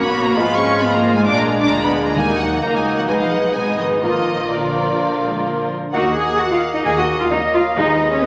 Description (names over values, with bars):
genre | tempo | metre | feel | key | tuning
quick classical-period movement for symphony orchestra | 130 BPM | 4/4 | uneven beats, rubato | Eb minor | A4 = 439 Hz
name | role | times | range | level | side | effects
rich studio violin section | melody | 0.0-8.3 s | Cb5 to D6 | -27 LUFS | equal | none
clear clarinet | second line | 0.0-8.3 s | D4 to Eb5 | -28 LUFS | equal | none
rich studio violin section | second line | 0.0-8.3 s | Gb4 to Ab5 | -29 LUFS | equal | none
mellow bassoon | accompaniment | 0.0-8.3 s | Ab3 to Cb4 | -25 LUFS | equal | none
rich chamber viola section | accompaniment | 0.0-8.0 s | F3 to Gb4 | -28 LUFS | equal | none
mellow French horn section | sustained chords | 0.0-7.9 s | Ab3 to Gb4 | -29 LUFS | equal | none
clear chamber double bass section | bass | 0.0-8.1 s | Ab1 to Eb2 | -31 LUFS | equal | none
dark chamber cello section | bass | 0.0-8.3 s | D3 to Ab4 | -23 LUFS | equal | none
timpani | percussion | 2.2-2.8, 6.9-8.3 s | Eb3 | -32 LUFS | equal | none
silver concert flute | second line | 5.9-8.3 s | Db5 to Ab5 | -26 LUFS | equal | none
room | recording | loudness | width
wet recital hall reverb, RT60 1.5 s | none | -18 LUFS | mono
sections
0.0-5.9 A section; 5.9-8.3 B section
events
none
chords
0.4 Fdim/Ab; 1.3 Bb7; 2.2 Ebm; 3.1 Abm/Cb; 4.0 Bb; 5.9 Ebm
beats
| 0.36 0.81 1.26 1.72 | 2.17 2.63 3.09 3.55 | 4.03 4.51 4.99 5.46 | 5.94 6.39 6.85 7.31 | 7.77 8.22